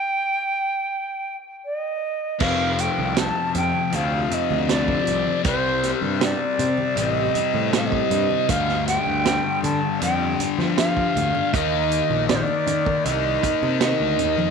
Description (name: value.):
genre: psychedelic rock.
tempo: 79 BPM.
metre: 4/4.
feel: straight.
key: unclear.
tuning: A4 = 439 Hz.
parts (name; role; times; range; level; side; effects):
silver concert flute; melody; 0.0-14.5 s; C5 to A5; -23 LUFS; right 3 dB; tape echo.
fuzz guitar; riff; 2.4-14.5 s; F2 to Eb4; -24 LUFS; left 13 dB; distortion, phaser.
fuzz picked electric bass; bass; 2.4-14.5 s; F1 to F3; -26 LUFS; right 1 dB; overdrive, tube saturation.
vintage drum kit; drums; 2.4-14.4 s; crash cymbal, hi-hat, kick drum, snare drum; -26 LUFS; right 7 dB; none.
congas; percussion; 3.0-14.5 s; none; -34 LUFS; right 11 dB; none.
room: moderate spring reverb, RT60 1.9 s.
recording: 1960s-style stereo with parts hard left and right.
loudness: -19 LUFS.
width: side -6 dB against mid.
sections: 0.0-2.4 A section; 2.4-14.5 B section.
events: stop 0.0-2.4.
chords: 0.0 N.C.; 2.4 F5; 5.5 Cm; 8.5 G5/D; 11.5 Eb5.